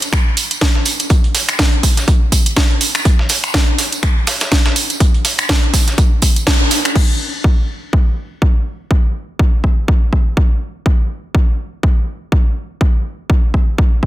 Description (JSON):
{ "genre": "house", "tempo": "123 BPM", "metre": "4/4", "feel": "swing 57% on 16ths", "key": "none", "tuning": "none", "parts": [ { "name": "house drum kit", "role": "drums", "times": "0.0-7.1 s", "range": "crash cymbal, finger snaps, hi-hat, snare drum", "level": "-17 LUFS", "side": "right 1 dB", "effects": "overdrive" }, { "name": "tambourine", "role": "percussion", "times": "0.0-6.9 s", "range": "none", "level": "-24 LUFS", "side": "right 3 dB", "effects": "none" }, { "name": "dusty soul sampler-style drum kit", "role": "drums", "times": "0.1-6.8 s", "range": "hi-hat, snare drum", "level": "-24 LUFS", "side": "right 1 dB", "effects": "high-pass filter on hats, high-pass filter on snare" }, { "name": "electronic kick drum", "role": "drums", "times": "0.1-14.1 s", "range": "none", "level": "-12 LUFS", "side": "equal", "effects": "overdrive" } ], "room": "little or no reverb", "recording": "dense, heavily limited modern master", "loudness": "-12 LUFS", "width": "side -15 dB against mid", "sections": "0.0-7.0 A section; 7.0-14.1 B section", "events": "band accent 6.5", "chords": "none" }